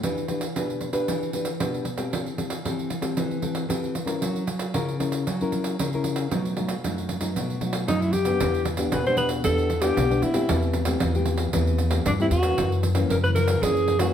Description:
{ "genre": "samba and choro", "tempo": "115 BPM", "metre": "4/4", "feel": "straight", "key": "E minor", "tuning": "A4 = 440 Hz", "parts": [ { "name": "nylon-string guitar", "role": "accompaniment", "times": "0.0-14.1 s", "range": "F#2 to B4", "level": "-26 LUFS", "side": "left 2 dB", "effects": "none" }, { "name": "pandeiro", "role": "percussion", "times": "0.0-14.1 s", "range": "none", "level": "-29 LUFS", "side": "right 3 dB", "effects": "none" }, { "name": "breathy alto saxophone", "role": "melody", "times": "7.9-14.1 s", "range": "D4 to C5", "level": "-24 LUFS", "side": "equal", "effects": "none" }, { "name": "upright bass", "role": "bass", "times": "8.4-14.1 s", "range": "B1 to E3", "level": "-25 LUFS", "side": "equal", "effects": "none" } ], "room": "moderate studio reverb, RT60 1.0 s", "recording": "heard from further back in the room", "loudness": "-22 LUFS", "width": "side -9 dB against mid", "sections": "0.0-8.4 A section; 8.4-14.1 B section", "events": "none", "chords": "0.0 Em7; 2.1 C6/E; 4.2 F#7; 6.3 B7; 8.4 Em7; 10.5 C6/E; 12.6 F#7" }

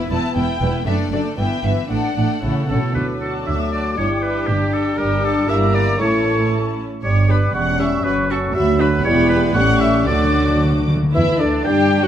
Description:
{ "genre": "quick classical-period movement for symphony orchestra", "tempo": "117 BPM", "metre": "2/4", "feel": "rubato", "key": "D major", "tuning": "A4 = 445 Hz", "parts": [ { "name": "clear studio violin section", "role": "second line", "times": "0.0-12.1 s", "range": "D4 to F#5", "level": "-29 LUFS", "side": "left 3 dB", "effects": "none" }, { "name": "rich studio viola section", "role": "accompaniment", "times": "0.0-12.1 s", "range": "E3 to G4", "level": "-25 LUFS", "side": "equal", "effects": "none" }, { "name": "dark studio violin section", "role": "melody", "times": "0.1-12.1 s", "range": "D5 to D6", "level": "-29 LUFS", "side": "left 3 dB", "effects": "none" }, { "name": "dark French horn section", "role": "sustained chords", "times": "0.1-12.1 s", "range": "D3 to G4", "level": "-23 LUFS", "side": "left 4 dB", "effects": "none" }, { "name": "rich studio double bass section", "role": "bass", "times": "0.1-12.1 s", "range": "E1 to G2", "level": "-22 LUFS", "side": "right 2 dB", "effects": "none" }, { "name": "warm studio cello section", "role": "bass", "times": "0.1-12.1 s", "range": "D2 to D4", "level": "-23 LUFS", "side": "right 2 dB", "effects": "none" }, { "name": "clear oboe", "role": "second line", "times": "2.7-12.1 s", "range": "G4 to G5", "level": "-23 LUFS", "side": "right 2 dB", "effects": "none" }, { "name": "flute section", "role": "second line", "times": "2.9-12.1 s", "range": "D5 to D6", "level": "-28 LUFS", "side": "left 3 dB", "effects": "none" }, { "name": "mellow bassoon", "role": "accompaniment", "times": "3.0-12.1 s", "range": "D3 to Bb3", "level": "-25 LUFS", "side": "equal", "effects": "none" }, { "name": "timpani", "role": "percussion", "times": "10.1-11.1 s", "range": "D3", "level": "-22 LUFS", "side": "left 1 dB", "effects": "none" } ], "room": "light reverb", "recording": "none", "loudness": "-15 LUFS", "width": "side -10 dB against mid", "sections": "0.0-3.0 A section; 3.0-11.1 B section", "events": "timpani fill 10.1-11.1", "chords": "0.0 Em; 0.9 D/F#; 1.4 Em/G; 1.9 D/A; 2.4 A; 3.0 D; 4.0 G5; 5.0 Gm; 5.5 Em7b5/G; 6.0 A; 7.0 G; 7.5 C#dim/E; 8.1 F#m; 8.6 Bm/D; 9.1 Em; 9.6 A7; 10.1 D; 11.1 G5" }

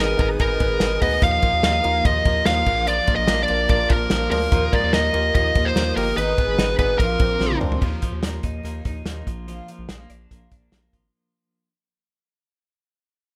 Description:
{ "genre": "jangly indie pop", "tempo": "146 BPM", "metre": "4/4", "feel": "straight", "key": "unclear", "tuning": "A4 = 439 Hz", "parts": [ { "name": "fuzz lead guitar", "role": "melody", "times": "0.0-7.6 s", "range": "Bb4 to F5", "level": "-23 LUFS", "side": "equal", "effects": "distortion" }, { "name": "picked twelve-string acoustic guitar", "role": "accompaniment", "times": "0.0-11.2 s", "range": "Ab2 to Ab4", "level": "-36 LUFS", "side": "equal", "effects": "none" }, { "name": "reed electric piano", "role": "accompaniment", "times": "0.0-7.8 s", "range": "Bb3 to D5", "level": "-31 LUFS", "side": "equal", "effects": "harmonic tremolo" }, { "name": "rich studio string section", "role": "sustained chords", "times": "0.0-7.8 s", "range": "Cb4 to Eb6", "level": "-39 LUFS", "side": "equal", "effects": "none" }, { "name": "twelve-string electric guitar", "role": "arpeggios", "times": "0.0-11.7 s", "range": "Eb3 to Eb4", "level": "-33 LUFS", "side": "equal", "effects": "tremolo" }, { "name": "round analog bass", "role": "bass", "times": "0.0-11.1 s", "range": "G1 to Eb2", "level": "-28 LUFS", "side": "equal", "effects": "none" }, { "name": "loose indie drum kit", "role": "drums", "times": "0.2-11.0 s", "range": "crash cymbal, hi-hat, kick drum, ride cymbal, snare drum, toms", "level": "-25 LUFS", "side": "equal", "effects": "none" } ], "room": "light reverb", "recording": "rough home demo mix", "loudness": "-20 LUFS", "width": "mono", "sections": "0.0-7.8 A section; 7.8-11.1 B section", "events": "drum fill 7.4-7.8; fade-out 7.8-11.1", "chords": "0.0 Abm; 1.2 Ebsus2; 2.7 Bb; 4.5 Ebsus2; 6.2 Abm; 7.0 Bbadd9; 7.8 Ebsus2; 9.3 Bb" }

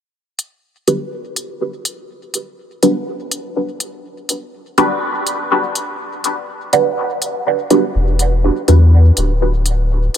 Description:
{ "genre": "dub techno", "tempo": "123 BPM", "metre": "4/4", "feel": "straight", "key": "E minor", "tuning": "A4 = 440 Hz", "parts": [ { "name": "electronic hi-hat", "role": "drums", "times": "0.4-10.2 s", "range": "none", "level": "-18 LUFS", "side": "left 1 dB", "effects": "none" }, { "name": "filtered dub chord stab", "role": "stabs", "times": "0.9-8.8 s", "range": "D4 to B4", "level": "-17 LUFS", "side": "right 1 dB", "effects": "phaser, dub echo" }, { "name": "soft dub sub bass", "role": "bass", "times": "7.9-10.1 s", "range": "D1 to E2", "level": "-11 LUFS", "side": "left 1 dB", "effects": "none" } ], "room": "moderate huge ambient reverb, RT60 4.8 s", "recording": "none", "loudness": "-14 LUFS", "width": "side -10 dB against mid", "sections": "0.1-10.2 A section", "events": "filter sweep on synth stab 0.1-10.2", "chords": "0.1 Em7" }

